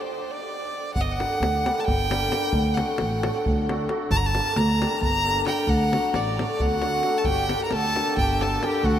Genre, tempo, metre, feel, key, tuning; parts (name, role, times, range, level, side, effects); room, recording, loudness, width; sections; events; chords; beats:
balkan folk, Balkan wedding band; 266 BPM (eighths); 7/8; straight; A4 = 439 Hz
clear violin; melody; 0.0-9.0 s; C5 to Bb5; -25 LUFS; right 1 dB
upright bass; bass; 1.0-9.0 s; G1 to D2; -26 LUFS; right 1 dB
davul; percussion; 1.0-8.9 s; -29 LUFS; left 1 dB
hammered dulcimer; accompaniment; 1.2-8.9 s; D3 to G4; -28 LUFS; left 2 dB
mellow trumpet; second line; 6.6-9.0 s; F#4 to Bb4; -33 LUFS; left 1 dB
wet huge ambient reverb, RT60 7.7 s; in a vast, echoing space; -21 LUFS; side -10 dB against mid
0.9-9.0 A section
stop 0.0-0.9
0.0 N.C.; 0.9 Gm; 2.5 D; 4.1 Gm; 5.7 D; 7.3 Gm
0.04 0.27 0.50 0.72 | 0.95 1.18 1.40 1.63 1.85 2.08 2.31 | 2.53 2.76 2.98 3.21 3.43 3.66 3.88 | 4.11 4.33 4.56 4.79 5.01 5.24 5.46 | 5.68 5.91 6.13 6.36 6.58 6.81 7.03 | 7.26 7.48 7.71 7.93 8.15 8.38 8.60 | 8.83